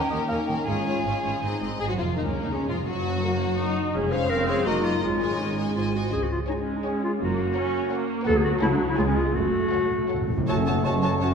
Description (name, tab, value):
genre	quick classical-period movement for symphony orchestra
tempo	165 BPM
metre	3/4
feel	rubato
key	Db major, F# minor from 8.3 s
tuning	A4 = 436 Hz
part	clear studio violin section	melody	0.0-11.3 s	Db4 to A5	-35 LUFS	left 3 dB	none
part	clear studio violin section	second line	0.0-11.3 s	Db4 to Eb5	-34 LUFS	left 3 dB	none
part	mellow cor anglais	second line	0.0-1.6, 10.5-11.3 s	A4 to Ab5	-31 LUFS	right 1 dB	none
part	rich studio viola section	accompaniment	0.0-11.3 s	Gb3 to F#4	-30 LUFS	right 2 dB	none
part	mellow French horn section	sustained chords	0.0-11.3 s	Db3 to G#4	-32 LUFS	left 2 dB	none
part	dark studio cello section	bass	0.1-11.3 s	Db2 to Db3	-31 LUFS	right 2 dB	none
part	rich studio double bass section	bass	0.1-11.3 s	F1 to Eb2	-31 LUFS	right 1 dB	none
part	warm clarinet	second line	1.8-11.3 s	B3 to C5	-27 LUFS	left 1 dB	none
part	timpani	percussion	9.4-10.4 s	F#2	-28 LUFS	left 2 dB	none
part	mellow large flute ensemble	second line	10.5-11.3 s	F#5 to A5	-32 LUFS	right 3 dB	none
part	mellow bassoon	accompaniment	10.5-11.3 s	F#3 to A3	-31 LUFS	right 5 dB	none
room	wet recital hall reverb, RT60 1.7 s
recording	recorded in a church or concert hall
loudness	-22 LUFS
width	side -6 dB against mid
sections	0.0-1.8 A section; 1.8-10.5 B section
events	timpani fill 9.4-10.5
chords	0.0 Eb7; 0.7 Db/Ab; 1.4 Ab; 1.8 Db; 2.9 Gb; 3.9 Db/F; 4.7 Ebm/Gb; 5.0 Absus4; 5.8 Ab; 6.1 Db5; 7.2 Gb; 8.3 Bm/D; 8.6 F#m/C#; 9.0 C#7; 9.4 F#m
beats	0.29 | 0.66 1.04 1.43 | 1.80 2.16 2.52 | 2.88 3.23 3.59 | 3.94 4.29 4.65 | 5.02 5.39 5.76 | 6.13 6.49 6.85 | 7.21 7.56 7.92 | 8.27 8.62 8.98 | 9.36 9.73 10.11 | 10.49 10.85 11.21